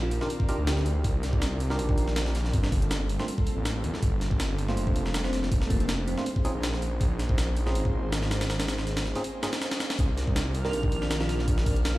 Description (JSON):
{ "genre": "drum and bass, jungle", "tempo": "161 BPM", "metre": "4/4", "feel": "swing 53% on 16ths", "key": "C minor", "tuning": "A4 = 440 Hz", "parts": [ { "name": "bell-like FM electric piano", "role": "melody", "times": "0.0-1.0, 4.7-6.3, 10.6-12.0 s", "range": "Bb3 to Bb4", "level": "-36 LUFS", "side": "equal", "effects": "chorus, phaser, dub echo" }, { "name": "airy breathy pad", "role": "sustained chords", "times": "0.0-12.0 s", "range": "Eb3 to D5", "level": "-37 LUFS", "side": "equal", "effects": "chorus" }, { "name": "tine electric piano", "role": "stabs", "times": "0.0-12.0 s", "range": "A3 to Bb4", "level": "-35 LUFS", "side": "right 1 dB", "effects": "vintage 12-bit sampler grit, dub echo" }, { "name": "detuned saw bass", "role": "bass", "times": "0.0-12.0 s", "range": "F1 to E2", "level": "-28 LUFS", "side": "equal", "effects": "none" }, { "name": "breakbeat sampler-style drum kit", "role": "drums", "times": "0.1-11.9 s", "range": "hi-hat, kick drum, snare drum", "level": "-28 LUFS", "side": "equal", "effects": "none" }, { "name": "reverse cymbal", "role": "sound effects", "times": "9.4-10.0 s", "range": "none", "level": "-42 LUFS", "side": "left 6 dB", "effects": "none" }, { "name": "backwards swelling texture", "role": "texture", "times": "10.1-12.0 s", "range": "F6", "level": "-42 LUFS", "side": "right 2 dB", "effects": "built-in reverb" } ], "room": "light reverb", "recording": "played on a big sound system in a bare room, large studio reverb", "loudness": "-25 LUFS", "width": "side -18 dB against mid", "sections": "0.0-12.0 A section", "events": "reverse cymbal 9.4-10.0", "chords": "0.0 Cm11; 2.5 Gm11; 6.3 Bbm11; 10.0 Cm11", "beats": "0.30 0.67 | 1.04 1.42 1.79 2.16 | 2.54 2.91 3.28 3.65 | 4.03 4.40 4.77 5.14 | 5.52 5.89 6.26 6.63 | 7.01 7.38 7.75 8.13 | 8.50 8.87 9.24 9.62 | 9.99 10.36 10.73 11.11 | 11.48 11.85" }